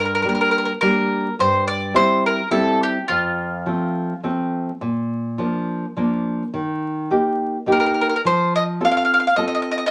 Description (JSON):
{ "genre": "italian folk, Italian serenade", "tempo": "105 BPM", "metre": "3/4", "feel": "straight", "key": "unclear", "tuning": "A4 = 440 Hz", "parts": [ { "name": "bowl-back mandolin", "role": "melody", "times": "0.0-4.2, 7.7-9.9 s", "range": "F4 to F5", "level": "-21 LUFS", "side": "equal", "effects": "none" }, { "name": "nylon-string guitar", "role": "accompaniment", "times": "0.0-9.8 s", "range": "F2 to A4", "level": "-24 LUFS", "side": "equal", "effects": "none" } ], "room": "wet studio reverb, RT60 0.5 s", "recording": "vinyl crackle", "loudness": "-20 LUFS", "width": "mono", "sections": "0.0-9.9 A section", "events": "none", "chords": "0.0 Gm; 1.4 C/G; 3.1 F; 4.8 Bb; 6.5 Eb; 8.2 F" }